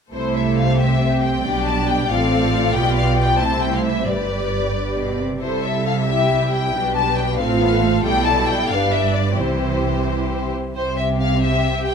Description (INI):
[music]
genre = quick classical-period movement for string orchestra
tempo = 90 BPM (dotted quarters)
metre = 6/8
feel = rubato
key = C major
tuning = A4 = 440 Hz
[part]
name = rich studio violin section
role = melody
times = 0.1-11.9 s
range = C5 to A5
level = -22 LUFS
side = left 5 dB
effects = none
[part]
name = rich studio violin section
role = second line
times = 0.1-11.9 s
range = C4 to E5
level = -25 LUFS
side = left 4 dB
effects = none
[part]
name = rich studio viola section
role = accompaniment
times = 0.1-11.9 s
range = E3 to G4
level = -24 LUFS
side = right 2 dB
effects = none
[part]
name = rich studio cello section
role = bass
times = 0.1-11.9 s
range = G2 to C3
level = -24 LUFS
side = right 2 dB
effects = none
[part]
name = warm studio double bass section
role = bass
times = 0.1-11.9 s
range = G1 to C2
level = -24 LUFS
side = right 3 dB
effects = none
[sound]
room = moderate recital hall reverb, RT60 1.6 s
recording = none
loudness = -17 LUFS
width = side -6 dB against mid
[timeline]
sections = 0.1-10.8 A section; 10.8-11.9 A section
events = none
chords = 0.1 C; 1.5 G/B; 2.1 F/A; 2.7 G7/B; 3.4 C; 4.1 G; 5.4 C; 6.7 G/B; 7.4 F/A; 8.1 G/B; 8.7 G; 9.4 C